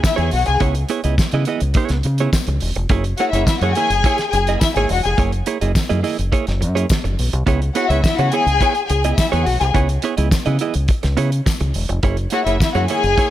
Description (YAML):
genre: disco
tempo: 105 BPM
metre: 4/4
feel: straight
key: C# dorian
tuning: A4 = 436 Hz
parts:
  - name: dark studio string section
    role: second line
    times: 0.0-13.3 s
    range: E4 to G#5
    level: -19 LUFS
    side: left 4 dB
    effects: none
  - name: direct-recorded clean electric guitar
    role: accompaniment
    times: 0.0-13.3 s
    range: A#3 to D#5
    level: -23 LUFS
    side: right 7 dB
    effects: none
  - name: damped 70s drum kit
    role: drums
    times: 0.0-13.3 s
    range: hi-hat, kick drum, snare drum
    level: -20 LUFS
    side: equal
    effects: gated reverb
  - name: tambourine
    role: percussion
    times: 0.0-12.7 s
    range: none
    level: -32 LUFS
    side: left 13 dB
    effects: none
  - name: deep dub fingered electric bass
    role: bass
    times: 0.2-13.1 s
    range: E1 to C#3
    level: -19 LUFS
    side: equal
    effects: none
room: small room reverb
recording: none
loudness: -15 LUFS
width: side -13 dB against mid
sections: 0.0-13.3 A section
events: none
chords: 0.0 C#m7; 2.9 F#9; 7.5 C#m7; 12.0 F#9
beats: 0.04 | 0.61 1.18 1.75 2.33 | 2.90 3.47 4.04 4.61 | 5.18 5.75 6.32 6.89 | 7.47 8.04 8.61 9.18 | 9.75 10.32 10.89 11.46 | 12.03 12.60 13.17